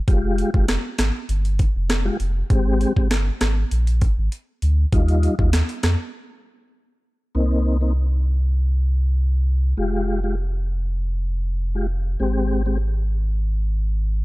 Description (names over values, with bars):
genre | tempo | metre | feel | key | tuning
dancehall | 99 BPM | 4/4 | straight | C minor | A4 = 440 Hz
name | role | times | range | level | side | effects
mellow tonewheel organ | accompaniment | 0.1-12.8 s | G3 to G4 | -24 LUFS | left 2 dB | chorus vibrato, fast rotary speaker
sub bass with octave | bass | 0.1-14.2 s | F1 to F2 | -20 LUFS | equal | none
island pop drum kit | drums | 0.1-6.0 s | hi-hat, kick drum, rim click, snare drum | -21 LUFS | equal | overdrive
room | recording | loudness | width
little or no reverb | dark, warm production | -19 LUFS | side -20 dB against mid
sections
0.0-7.4 A section; 7.4-14.2 B section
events
break 6.1-7.4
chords
0.1 Fmadd9; 2.5 Abmaj7; 4.9 Ebadd9; 7.4 Cm7; 9.8 Fmadd9; 12.2 Abmaj7